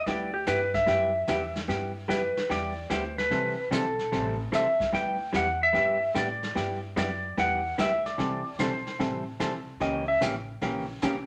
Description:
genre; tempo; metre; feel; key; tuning
country, western swing; 148 BPM; 4/4; swing 67% on 8ths; G major; A4 = 441 Hz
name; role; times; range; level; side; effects
clean lap steel guitar; melody; 0.0-10.2 s; G4 to G5; -29 LUFS; equal; none
hollow-body jazz guitar; accompaniment; 0.1-11.2 s; C3 to A4; -33 LUFS; equal; none
upright bass; bass; 0.1-11.3 s; A1 to A2; -41 LUFS; equal; none
vintage brush drum kit; drums; 0.1-11.3 s; brushed snare drum, hi-hat, kick drum, snare drum; -38 LUFS; equal; none
room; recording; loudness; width
wet studio reverb, RT60 0.7 s; none; -28 LUFS; mono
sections
0.0-1.7 A section; 1.7-11.3 A section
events
electric slide guitar solo 0.0-1.7, 1.7-11.3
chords
0.0 G6; 3.3 C6; 4.9 G6; 8.2 C6; 9.8 C#dim7

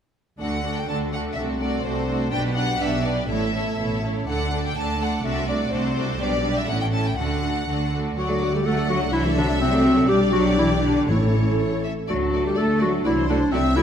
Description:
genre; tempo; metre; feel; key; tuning
quick classical-period movement for symphony orchestra; 124 BPM; 2/4; rubato; D major; A4 = 440 Hz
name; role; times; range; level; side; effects
clear studio violin section; melody; 0.4-13.8 s; C5 to A5; -30 LUFS; left 2 dB; none
rich studio violin section; second line; 0.4-13.8 s; E4 to F#5; -31 LUFS; left 3 dB; none
rich studio viola section; accompaniment; 0.4-13.8 s; F#3 to A4; -27 LUFS; right 2 dB; none
rich studio cello section; bass; 0.4-13.8 s; A2 to A3; -28 LUFS; equal; none
warm studio double bass section; bass; 0.4-13.8 s; A1 to D2; -27 LUFS; right 2 dB; none
warm clarinet; second line; 8.2-13.8 s; C4 to A4; -22 LUFS; left 1 dB; none
dark French horn section; sustained chords; 8.2-13.8 s; F#3 to D4; -28 LUFS; left 2 dB; none
timpani; percussion; 11.1-11.8 s; A2; -26 LUFS; left 1 dB; none
room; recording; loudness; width
wet scoring stage reverb, RT60 1.6 s; none; -20 LUFS; side -8 dB against mid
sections
0.4-8.2 A section; 8.2-13.8 A section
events
none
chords
0.4 D; 1.4 D7/C; 2.3 G/B; 3.3 A; 4.3 D5; 5.2 D7/C; 6.2 G/B; 6.7 A; 7.2 D; 9.1 D7/C; 10.1 G/B; 11.1 A; 12.1 D; 13.1 D7/C

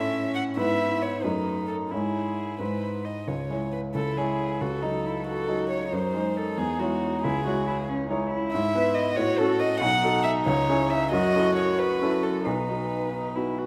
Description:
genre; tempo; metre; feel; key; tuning
quick classical-period movement for piano trio; 91 BPM (dotted quarters); 6/8; straight; C# minor; A4 = 440 Hz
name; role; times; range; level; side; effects
dark violin; melody; 0.0-13.6 s; F#4 to F#5; -31 LUFS; equal; none
rich cello; second line; 0.0-13.7 s; C#4 to F#4; -32 LUFS; equal; none
clear baby grand piano; accompaniment; 0.0-13.7 s; B1 to D#5; -29 LUFS; equal; none
room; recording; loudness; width
moderate scoring stage reverb, RT60 1.8 s; none; -26 LUFS; mono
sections
0.0-3.3 A section; 3.3-13.7 B section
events
none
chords
0.0 A; 0.6 E/G#; 1.2 D#dim/F#; 1.9 C#m/G#; 2.6 G#; 3.3 C#m; 4.6 D#dim/C#; 5.9 G#7/F#; 6.6 C#m/E; 7.2 C#m; 8.5 E/G#; 9.2 F#m/A; 9.8 B7; 10.5 C#m; 11.1 F#m7; 12.5 B

